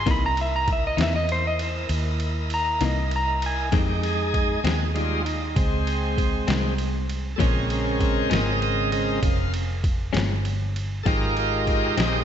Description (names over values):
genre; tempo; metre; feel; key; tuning
slow blues; 66 BPM (dotted quarters); 12/8; straight; F minor; A4 = 440 Hz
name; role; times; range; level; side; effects
clean lap steel guitar; melody; 0.0-3.7 s; C5 to B5; -26 LUFS; equal; slapback echo
bright tonewheel organ; sustained chords; 0.0-12.2 s; Db3 to F5; -26 LUFS; right 1 dB; slow rotary speaker, overdrive
vintage muted fingered electric bass; bass; 0.0-12.2 s; F1 to F2; -26 LUFS; equal; none
clean electric guitar; accompaniment; 0.1-12.2 s; F2 to D#4; -30 LUFS; left 7 dB; tremolo, slapback echo
trip hop sampler-style drum kit; drums; 0.1-12.1 s; kick drum, ride cymbal, snare drum; -28 LUFS; equal; none
room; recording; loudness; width
moderate lush hall reverb, RT60 2.4 s; big arena sound, nothing above 7.9 kHz; -21 LUFS; side -9 dB against mid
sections
0.0-3.7 A section; 3.7-12.2 A section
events
electric slide guitar solo 0.0-3.7; kick and snare drop out 1.9-3.7; tonewheel organ solo 3.7-12.2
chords
0.1 C7#9; 3.7 Fm7; 7.4 Bbm7; 11.1 Fm7